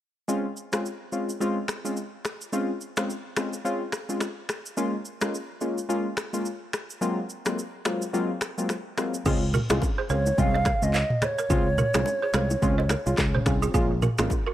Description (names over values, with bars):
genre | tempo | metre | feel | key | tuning
afrobeats | 107 BPM | 4/4 | swing 58% on 16ths | Db major | A4 = 440 Hz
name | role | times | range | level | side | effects
warm analog keys | accompaniment | 0.3-14.3 s | Gb3 to F4 | -28 LUFS | left 1 dB | chorus
afro-pop drum kit | drums | 0.3-14.5 s | crash cymbal, finger snaps, handclaps, kick drum, rim click, shaker, toms | -28 LUFS | equal | none
balafon | riff | 9.3-14.5 s | F4 to F5 | -32 LUFS | right 6 dB | analog delay
fingered electric bass | bass | 9.3-14.3 s | Ab1 to Db2 | -26 LUFS | equal | none
congas and bongos | percussion | 9.3-14.5 s | none | -34 LUFS | left 2 dB | none
mellow hollow silver concert flute | melody | 10.1-13.5 s | Db5 to F5 | -28 LUFS | right 2 dB | none
room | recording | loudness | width
little or no reverb | dry, gritty hardware recording | -24 LUFS | side -12 dB against mid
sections
0.3-9.3 A section; 9.3-14.5 B section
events
none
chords
0.3 Dbmaj7; 4.8 Bbm7; 7.0 Ab13; 9.3 Dbmaj7; 13.7 Bbm7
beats
| 0.28 0.85 1.41 1.97 | 2.53 3.09 3.65 4.21 | 4.77 5.33 5.89 6.45 | 7.01 7.58 8.14 8.70 | 9.26 9.82 10.38 10.94 | 11.50 12.06 12.62 13.18 | 13.74 14.30